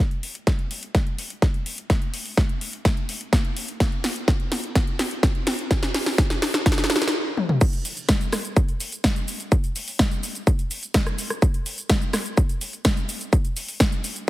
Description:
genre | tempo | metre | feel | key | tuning
EDM | 126 BPM | 4/4 | straight | none | none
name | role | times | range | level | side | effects
big-room dance drum kit | drums | 0.1-14.3 s | crash cymbal, hi-hat, rim click, shaker, snare drum, toms | -25 LUFS | equal | none
electronic kick drum | drums | 0.5-13.9 s | none | -20 LUFS | equal | none
room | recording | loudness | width
moderate lush hall reverb, RT60 1.6 s, digital ambience | heavily compressed radio sound | -21 LUFS | side -16 dB against mid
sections
0.0-7.6 A section; 7.6-14.3 B section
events
build-up 0.0-7.6; drum fill 0.0-7.1, 7.4; stop 7.1-7.6; drop 7.6-14.3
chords
none

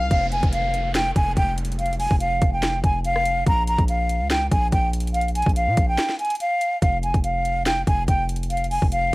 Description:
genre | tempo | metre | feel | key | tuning
hip hop, trap | 143 BPM | 4/4 | half-time | unclear | A4 = 440 Hz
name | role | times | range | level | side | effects
breathy concert flute | melody | 0.0-9.1 s | F5 to Bb5 | -22 LUFS | equal | none
hard-hitting 808-style bass | bass | 0.0-9.1 s | F1 to Bb2 | -25 LUFS | equal | none
trap drum kit | drums | 0.1-9.0 s | hi-hat, kick drum, rim click, snare drum | -22 LUFS | equal | none
downlifter | sound effects | 0.1-3.5 s | none | -37 LUFS | right 2 dB | none
room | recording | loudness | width
little or no reverb | dry, gritty hardware recording, vinyl crackle | -19 LUFS | side -21 dB against mid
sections
0.1-9.1 A section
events
break 6.0-6.8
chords
0.1 N.C.; 3.5 Bb5; 6.8 Fm

